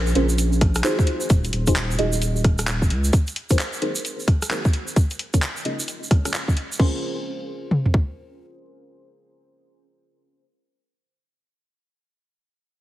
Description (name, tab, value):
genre	UK garage, two-step garage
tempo	131 BPM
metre	4/4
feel	swing 63% on 16ths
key	Bb minor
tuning	A4 = 440 Hz
part	saturated sub bass	bass	0.0-3.1 s	Eb1 to Db2	-22 LUFS	equal	sidechain pumping
part	egg shaker	percussion	0.1-6.8 s	none	-31 LUFS	right 3 dB	none
part	deep mellow chord stab	stabs	0.2-10.4 s	Db4 to Eb5	-26 LUFS	right 1 dB	chorus, phaser, digital delay
part	garage drum kit	drums	0.2-6.9 s	crash cymbal, handclaps, hi-hat, rim click	-28 LUFS	equal	small room reverb
part	garage drum kit	drums	0.6-8.1 s	kick drum, toms	-18 LUFS	equal	small room reverb
room	light reverb, digital ambience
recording	heavily compressed radio sound, multiband compression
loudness	-19 LUFS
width	side -15 dB against mid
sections	0.0-6.8 A section; 6.8-10.5 B section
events	filter sweep on synth stab 0.0-6.8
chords	0.0 Bbm9; 1.1 Ebmadd9; 3.1 Ab9; 5.0 Db6; 6.8 Bbm9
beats	0.38 0.84 | 1.30 1.76 2.21 2.67 | 3.13 3.59 4.05 4.50 | 4.96 5.42 5.88 6.34 | 6.79 7.25 7.71 8.17 | 8.63 9.08 9.54 10.00